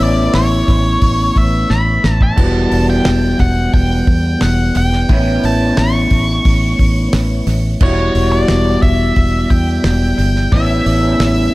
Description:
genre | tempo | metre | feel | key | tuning
psychedelic rock | 88 BPM | 4/4 | straight | E dorian | A4 = 439 Hz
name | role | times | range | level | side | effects
octave-fuzz lead guitar | melody | 0.0-11.5 s | C#5 to C#6 | -20 LUFS | left 1 dB | distortion, tape echo
electric guitar through a small old amp | riff | 0.0-11.5 s | E2 to F#4 | -16 LUFS | equal | rotary speaker
fingered electric bass | bass | 0.0-11.5 s | E1 to E2 | -16 LUFS | equal | none
damped 70s drum kit | drums | 0.0-11.4 s | crash cymbal, hi-hat, kick drum, snare drum | -17 LUFS | equal | none
room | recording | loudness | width
studio reverb | echo-heavy mix | -11 LUFS | side -19 dB against mid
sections
0.0-11.5 A section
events
drum fill 1.7-2.4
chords
0.0 Aadd9; 2.4 Emadd9; 5.1 Aadd9; 7.8 Emadd9; 10.5 Aadd9

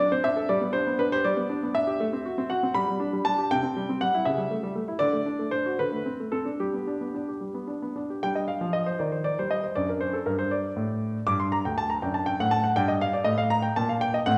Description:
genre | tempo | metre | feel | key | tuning
classical-period piano sonatina | 80 BPM (dotted quarters) | 6/8 | rubato | G major, G minor from 8.2 s | A4 = 439 Hz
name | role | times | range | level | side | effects
clear grand piano | solo | 0.0-14.4 s | D2 to D6 | -27 LUFS | equal | none
room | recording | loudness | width
wet recital hall reverb, RT60 1.4 s | recorded in a church or concert hall | -27 LUFS | mono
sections
0.0-8.2 A section; 8.2-14.4 B section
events
none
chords
0.5 G; 2.0 F#dim/A; 2.7 G; 3.5 C; 4.3 A7/C#; 5.0 D; 5.8 D5; 6.6 G; 8.2 G5; 9.0 Eb6; 9.8 D/F#; 11.3 G5; 12.0 D/F#; 12.8 Gm

